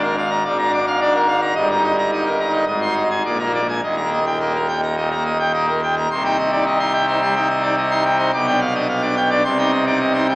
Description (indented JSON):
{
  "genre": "classical, organ toccata",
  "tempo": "107 BPM",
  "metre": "4/4",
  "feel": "straight",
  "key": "Eb major, C minor from 6.1 s",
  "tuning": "A4 = 444 Hz",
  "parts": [
    { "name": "pipe organ, full organ", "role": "solo", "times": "0.0-10.3 s", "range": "Eb1 to D6", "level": "-16 LUFS", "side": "equal", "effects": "none" }
  ],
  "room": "wet cathedral reverb, RT60 4.9 s",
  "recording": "heard from further back in the room, small speaker sound",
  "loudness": "-16 LUFS",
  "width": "side -22 dB against mid",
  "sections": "0.0-6.1 A section; 6.1-10.3 B section",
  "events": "none",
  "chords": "0.0 Bb7/Ab; 1.6 Eb/G; 2.7 Ab; 3.2 Bb7; 3.8 Eb; 6.1 Cm; 8.3 G7/B; 9.5 Cm"
}